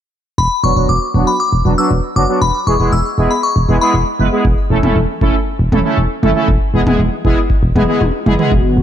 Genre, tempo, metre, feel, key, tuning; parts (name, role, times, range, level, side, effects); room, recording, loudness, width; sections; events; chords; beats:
synth-pop; 118 BPM; 4/4; straight; E mixolydian; A4 = 441 Hz
glassy synth bell; second line; 0.4-3.9 s; B5 to E6; -17 LUFS; left 2 dB; chorus, digital delay
solid FM bass; bass; 0.4-8.8 s; E1 to F#1; -15 LUFS; equal
analog synth brass; accompaniment; 0.6-8.5 s; F#3 to B4; -16 LUFS; right 1 dB; chorus, low-pass filter
electro analog drum machine; drums; 4.4-8.6 s; kick drum, toms; -16 LUFS; equal
warm analog pad; sustained chords; 8.5-8.8 s; D3 to F#4; -14 LUFS; left 1 dB; chorus
light reverb; dark, warm production; -12 LUFS; side -10 dB against mid
0.4-8.5 A section
filter sweep on analog polysynth 0.4-8.5; drum fill 8.0-8.5
0.4 Bm/E; 2.4 E; 4.5 A/E; 6.5 E
| 0.38 0.89 1.40 1.91 | 2.42 2.92 3.43 3.94 | 4.45 4.96 5.47 5.97 | 6.48 6.99 7.50 8.01 | 8.52